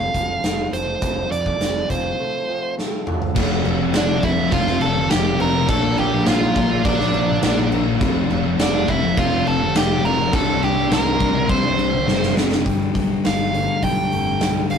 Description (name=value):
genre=quiet-loud alternative rock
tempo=103 BPM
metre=4/4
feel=straight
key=unclear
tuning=A4 = 440 Hz
part: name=dark smooth lead guitar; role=melody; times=0.0-14.8 s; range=D4 to C6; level=-22 LUFS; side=right 3 dB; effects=overdrive
part: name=electric guitar through a small old amp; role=arpeggios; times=0.0-3.4, 12.7-14.8 s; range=F3 to G4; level=-30 LUFS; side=equal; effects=none
part: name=fuzz fingered electric bass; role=bass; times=0.0-14.8 s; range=F1 to F2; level=-26 LUFS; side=right 1 dB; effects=overdrive
part: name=big rock drum kit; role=drums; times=0.1-14.8 s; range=crash cymbal, hi-hat, kick drum, snare drum, toms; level=-22 LUFS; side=equal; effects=none
part: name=overdriven semi-hollow guitar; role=riff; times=3.3-12.6 s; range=F2 to G4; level=-26 LUFS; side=right 6 dB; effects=none
part: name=thick fuzz guitar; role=riff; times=3.3-14.8 s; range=F2 to D4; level=-21 LUFS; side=left 6 dB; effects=distortion
part: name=rich chamber string section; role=sustained chords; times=3.4-12.6 s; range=F4 to C6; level=-36 LUFS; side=left 1 dB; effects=none
room=wet studio ambience, RT60 0.5 s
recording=rough rehearsal-room recording, warm saturation, lossy compression artefacts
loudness=-17 LUFS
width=side -7 dB against mid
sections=0.0-3.4 A section; 3.4-12.7 B section; 12.7-14.8 C section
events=drum fill 2.8-3.4, 12.1-12.7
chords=0.0 F; 3.4 Fadd9; 5.7 Bbadd9; 8.0 Fadd9; 10.3 Csus2; 12.7 Gadd9